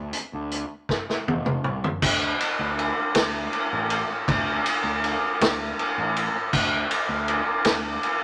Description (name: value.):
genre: psychedelic rock.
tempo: 53 BPM (dotted quarters).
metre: 6/8.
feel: straight.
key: unclear.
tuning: A4 = 440 Hz.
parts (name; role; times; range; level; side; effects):
fuzz picked electric bass; bass; 0.0-8.0 s; F1 to D2; -34 LUFS; equal; overdrive.
vintage drum kit; drums; 0.1-8.2 s; crash cymbal, hi-hat, kick drum, ride cymbal, snare drum, toms; -25 LUFS; equal; none.
room: light reverb.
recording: none.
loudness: -25 LUFS.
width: mono.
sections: 0.0-2.0 A section; 2.0-8.2 B section.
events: drum fill 0.9-2.0.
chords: none.